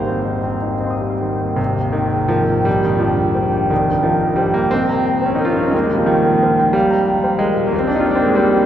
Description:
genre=classical, impressionist solo piano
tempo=59 BPM (dotted quarters)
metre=6/8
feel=uneven beats, rubato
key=Ab major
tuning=A4 = 436 Hz
part: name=clear concert grand piano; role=solo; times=0.0-8.7 s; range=Ab1 to Eb6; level=-14 LUFS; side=equal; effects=none
room=wet cathedral reverb, RT60 6.8 s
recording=recorded in a church or concert hall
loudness=-14 LUFS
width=side -10 dB against mid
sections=0.0-1.6 A section; 1.6-8.7 A section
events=none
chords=0.0 Abmaj7; 1.6 Absus2; 2.7 Bb13; 3.7 Cm7; 5.7 Eb69; 7.7 Fm9/Eb

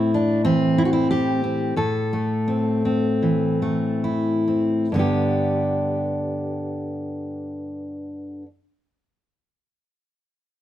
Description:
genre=folk, solo fingerstyle acoustic guitar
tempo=65-96 BPM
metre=4/4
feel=straight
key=G major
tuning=A4 = 439 Hz
part: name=fingerpicked steel-string acoustic guitar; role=solo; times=0.0-8.5 s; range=G2 to A4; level=-20 LUFS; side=equal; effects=none
room=light reverb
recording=none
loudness=-20 LUFS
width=side -12 dB against mid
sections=0.0-4.9 A section; 4.9-8.6 B section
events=slowing down 0.0-4.9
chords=0.0 Am; 4.9 G

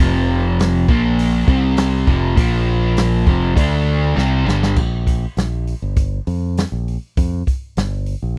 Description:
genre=classic rock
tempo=100 BPM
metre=4/4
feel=straight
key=F major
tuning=A4 = 441 Hz
part: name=crunchy overdriven guitar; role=riff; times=0.0-4.8 s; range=F2 to D4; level=-19 LUFS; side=equal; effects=none
part: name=modern bright fingered electric bass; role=bass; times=0.0-8.4 s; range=F1 to F2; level=-22 LUFS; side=equal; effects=none
part: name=vintage drum kit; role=drums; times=0.0-8.2 s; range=crash cymbal, hi-hat, kick drum, snare drum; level=-20 LUFS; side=equal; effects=none
room=little or no reverb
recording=dry, close 1970s-style studio recording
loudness=-17 LUFS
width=mono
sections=0.0-4.8 A section; 4.8-8.4 B section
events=drum fill 4.2-4.8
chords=0.0 F5; 0.9 Bb5; 1.5 C5; 2.1 F5; 2.4 Bb5; 3.3 F5; 3.6 D5; 4.2 Gsus4; 4.8 Bb5

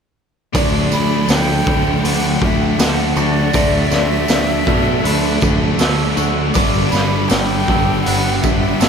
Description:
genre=rock, shoegaze and dream pop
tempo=80 BPM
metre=4/4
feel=straight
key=D major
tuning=A4 = 439 Hz
part: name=clean electric guitar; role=arpeggios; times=0.5-8.9 s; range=F#4 to D5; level=-23 LUFS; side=left 1 dB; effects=wide subtle chorus, analog delay
part: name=distorted electric guitar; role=riff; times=0.5-8.9 s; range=G2 to D4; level=-23 LUFS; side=equal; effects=overdrive
part: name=overdriven semi-hollow guitar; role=riff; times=0.5-8.9 s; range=G2 to D4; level=-22 LUFS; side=right 9 dB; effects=reverse reverb
part: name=thick fuzz guitar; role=riff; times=0.5-8.9 s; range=G2 to D4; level=-22 LUFS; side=left 9 dB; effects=distortion, analog chorus
part: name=picked electric bass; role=bass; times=0.5-8.9 s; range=G1 to B2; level=-20 LUFS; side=equal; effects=none
part: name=raw garage drum kit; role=drums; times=0.5-8.9 s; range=hi-hat, kick drum, snare drum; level=-20 LUFS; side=equal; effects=none
part: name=tambourine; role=percussion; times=0.5-8.9 s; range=none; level=-30 LUFS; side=right 14 dB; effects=none
part: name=breathy jazz flute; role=melody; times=0.9-8.9 s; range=D5 to B5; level=-23 LUFS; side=equal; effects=analog delay
room=moderate huge ambient reverb, RT60 7.2 s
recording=dreamy mix soaked in reverb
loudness=-13 LUFS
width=side -6 dB against mid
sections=0.5-8.9 A section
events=none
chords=0.5 D69; 6.5 G

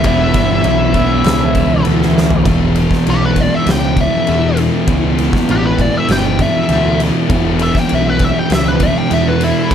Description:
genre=stoner and doom metal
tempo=99 BPM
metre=4/4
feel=straight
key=E dorian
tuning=A4 = 440 Hz
part: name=fuzz lead guitar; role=melody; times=0.0-9.7 s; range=E4 to G5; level=-19 LUFS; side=left 1 dB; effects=wah, distortion, digital delay
part: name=overdriven semi-hollow guitar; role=riff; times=0.0-2.5 s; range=E3 to B4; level=-21 LUFS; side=left 1 dB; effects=none
part: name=thick fuzz guitar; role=riff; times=0.0-9.7 s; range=E2 to E3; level=-19 LUFS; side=left 10 dB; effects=distortion
part: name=thick fuzz guitar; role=riff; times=0.0-9.7 s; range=E2 to E3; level=-18 LUFS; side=right 9 dB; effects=distortion
part: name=growling picked electric bass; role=bass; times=0.0-9.7 s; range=E1 to E2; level=-18 LUFS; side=equal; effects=overdrive
part: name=oversized low-tuned drum kit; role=drums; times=0.0-9.7 s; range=kick drum, ride cymbal, snare drum, toms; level=-17 LUFS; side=left 1 dB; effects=none
room=little or no reverb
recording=none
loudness=-11 LUFS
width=side -8 dB against mid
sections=0.0-2.5 A section; 2.5-9.7 B section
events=drum fill 2.2-2.5; lead electric guitar solo 2.5-9.7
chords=0.0 Em; 2.5 E5

